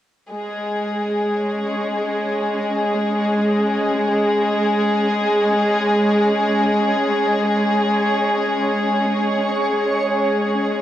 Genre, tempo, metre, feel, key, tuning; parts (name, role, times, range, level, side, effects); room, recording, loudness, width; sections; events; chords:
trip hop; free time; A4 = 440 Hz
warm chamber string section; sustained chords; 0.3-10.8 s; G#3 to G#4; -18 LUFS; equal; vintage 12-bit sampler grit
backwards swelling texture; texture; 1.2-10.8 s; C#4 to C#5; -25 LUFS; right 2 dB; built-in reverb
light reverb; dry, gritty hardware recording, cassette tape; -17 LUFS; side -12 dB against mid
0.3-10.8 A section
0.3 G#sus4